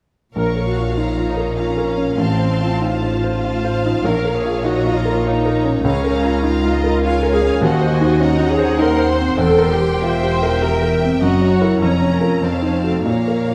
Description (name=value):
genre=classical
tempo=100 BPM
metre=3/4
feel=rubato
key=Bb minor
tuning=A4 = 440 Hz
part: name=clear baby grand piano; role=melody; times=0.4-13.5 s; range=A1 to C5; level=-20 LUFS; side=equal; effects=none
part: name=rich studio violin section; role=melody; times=0.4-13.5 s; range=F5 to Db6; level=-34 LUFS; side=equal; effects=none
part: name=rich studio violin section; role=second line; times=0.4-13.5 s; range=Bb4 to Bb5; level=-28 LUFS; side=equal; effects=none
part: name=rich studio viola section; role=accompaniment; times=0.4-13.5 s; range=Bb3 to C5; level=-24 LUFS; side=equal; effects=none
part: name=rich studio cello section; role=bass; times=0.4-13.5 s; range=Db2 to Bb2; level=-27 LUFS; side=equal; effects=none
part: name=rich studio double bass section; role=bass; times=0.4-13.5 s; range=E1 to Eb2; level=-27 LUFS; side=equal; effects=none
room=moderate scoring stage reverb, RT60 1.5 s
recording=none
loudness=-17 LUFS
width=mono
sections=0.4-13.5 A section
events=none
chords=0.4 Bbm; 2.2 F7/A; 4.1 Bbm; 5.9 Bbm/Db; 7.6 Cdim/Eb; 9.4 C7/E; 11.2 Gb7; 11.8 Bbm/F; 12.4 F7b9